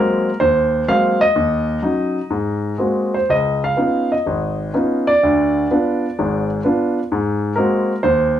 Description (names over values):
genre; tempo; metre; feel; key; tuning
solo jazz; 127 BPM; 4/4; swing 69% on 8ths, rubato; Ab mixolydian; A4 = 440 Hz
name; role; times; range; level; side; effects
warm grand piano; solo; 0.0-8.4 s; Ab1 to F5; -15 LUFS; equal; none
room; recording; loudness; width
wet studio ambience, RT60 0.5 s; heard from further back in the room; -15 LUFS; side -10 dB against mid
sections
0.0-8.4 A section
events
none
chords
0.0 Ab9; 1.4 Ebm7; 2.3 Ab9; 3.3 Db9; 5.2 Ddim7; 7.1 Ab9